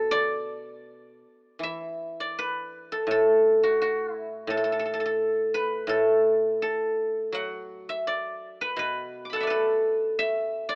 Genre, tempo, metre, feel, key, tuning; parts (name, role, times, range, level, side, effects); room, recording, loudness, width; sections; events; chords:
chinese traditional; 78-88 BPM; 2/4; rubato; D gong mode; A4 = 440 Hz
guzheng; solo; 0.0-10.8 s; A2 to D6; -26 LUFS; equal
small room ambience; rough home demo mix, AM radio sound; -26 LUFS; mono
0.0-1.6 A section; 1.6-10.8 B section